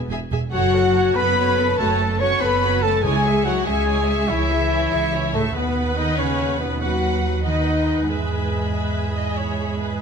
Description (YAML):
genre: cinematic, heroic adventure film score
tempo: 95 BPM (dotted quarters)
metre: 12/8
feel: straight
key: F# dorian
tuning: A4 = 440 Hz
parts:
  - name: dark symphonic violin section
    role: melody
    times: 0.0-10.0 s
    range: G#4 to C#6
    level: -27 LUFS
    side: left 2 dB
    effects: none
  - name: mellow clarinet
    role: second line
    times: 0.0-10.0 s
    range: G#4 to C#6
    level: -32 LUFS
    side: left 2 dB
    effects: none
  - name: mellow French horn section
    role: sustained chords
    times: 0.0-10.0 s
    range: G#3 to C#5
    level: -24 LUFS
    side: left 5 dB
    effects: none
  - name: warm trumpet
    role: stabs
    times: 0.0-10.0 s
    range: G#3 to C#5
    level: -28 LUFS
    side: right 3 dB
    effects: none
  - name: rich symphonic cello section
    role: bass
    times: 0.0-10.0 s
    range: G#2 to C#4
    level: -27 LUFS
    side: right 2 dB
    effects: none
  - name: rich symphonic violin section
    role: second line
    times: 0.1-10.0 s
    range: A4 to C#6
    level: -31 LUFS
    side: left 2 dB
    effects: none
  - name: rich symphonic viola section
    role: accompaniment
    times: 0.1-10.0 s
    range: E4 to E5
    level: -29 LUFS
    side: right 1 dB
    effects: none
  - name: rich symphonic double bass section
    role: bass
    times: 0.1-10.0 s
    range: E1 to E2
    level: -24 LUFS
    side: right 4 dB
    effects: none
  - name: timpani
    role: percussion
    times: 3.0-3.6 s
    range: C#3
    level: -31 LUFS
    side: left 1 dB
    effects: none
room: moderate recital hall reverb, RT60 1.8 s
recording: none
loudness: -18 LUFS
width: side -6 dB against mid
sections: 0.0-10.0 A section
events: none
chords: 0.0 E; 0.5 F#m; 3.0 C#m; 5.5 B/D#; 8.1 E